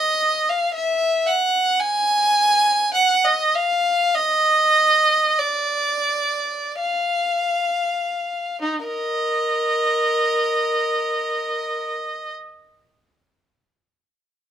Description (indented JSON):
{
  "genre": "classical, free, expressive piece for unaccompanied violin",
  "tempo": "27-60 BPM",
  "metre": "4/4",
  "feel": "rubato",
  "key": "Eb minor",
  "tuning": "A4 = 440 Hz",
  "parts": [
    { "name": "rich violin", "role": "solo", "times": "0.0-12.3 s", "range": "Eb4 to Ab5", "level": "-18 LUFS", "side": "right 1 dB", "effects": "none" }
  ],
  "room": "little or no reverb",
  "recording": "close, detailed microphones",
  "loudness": "-18 LUFS",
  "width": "side -9 dB against mid",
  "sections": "0.0-8.6 A section; 8.6-14.5 B section",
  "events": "slowing down 0.0-8.6",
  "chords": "none"
}